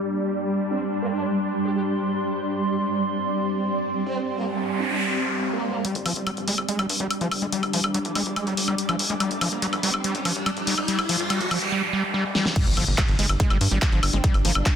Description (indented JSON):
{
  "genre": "psychedelic trance",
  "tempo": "143 BPM",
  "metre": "4/4",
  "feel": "straight",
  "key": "unclear",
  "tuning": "A4 = 438 Hz",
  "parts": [
    { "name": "swarming drone", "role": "sustained chords", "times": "0.0-14.8 s", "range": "G3 to D4", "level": "-29 LUFS", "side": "equal", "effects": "built-in reverb, sidechain pumping" },
    { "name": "granular cloud pad", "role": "texture", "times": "0.0-14.8 s", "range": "G3 to D6", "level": "-29 LUFS", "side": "right 2 dB", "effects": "built-in reverb, sidechain pumping" },
    { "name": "formant-sweep wobble bass", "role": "second line", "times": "0.7-5.8, 14.1-14.7 s", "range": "Bb3 to G4", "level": "-34 LUFS", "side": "right 3 dB", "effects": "lush chorus, cassette tape, sidechain pumping, high-pass filter, tape echo" },
    { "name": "noise sweep, riser and impact", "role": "sound effects", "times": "4.4-14.2 s", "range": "none", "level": "-30 LUFS", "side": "right 1 dB", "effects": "none" },
    { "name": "screaming distorted acid line", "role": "riff", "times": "5.8-14.7 s", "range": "F3 to Ab3", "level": "-28 LUFS", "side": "moving between left 4 dB and right 4 dB", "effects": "distortion, chorus, auto-pan, sidechain pumping, digital delay" },
    { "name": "big-room dance drum kit", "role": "drums", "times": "5.8-14.7 s", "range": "crash cymbal, handclaps, hi-hat, snare drum, woodblock", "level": "-25 LUFS", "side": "left 2 dB", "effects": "none" },
    { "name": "tight sequencer bass", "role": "bass", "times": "6.0-14.6 s", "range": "G1 to G2", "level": "-28 LUFS", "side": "equal", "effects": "high-pass filter" },
    { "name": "electronic kick drum", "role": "drums", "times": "12.6-14.7 s", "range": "none", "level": "-22 LUFS", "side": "equal", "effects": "none" }
  ],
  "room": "light reverb, digital ambience",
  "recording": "dense, heavily limited modern master, low-pass filter",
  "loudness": "-21 LUFS",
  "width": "side -8 dB against mid",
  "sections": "0.0-5.8 A section; 5.8-12.6 B section; 12.6-14.8 C section",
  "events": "filter sweep 0.0-5.8; noise sweep 4.4-5.8, 10.9-12.6; build-up 5.8-12.6; riser 5.8-11.7; filter sweep on acid bass 5.8-12.6; drum fill 12.3; drop 12.6-14.8; impact 12.6-14.2",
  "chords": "0.0 G5"
}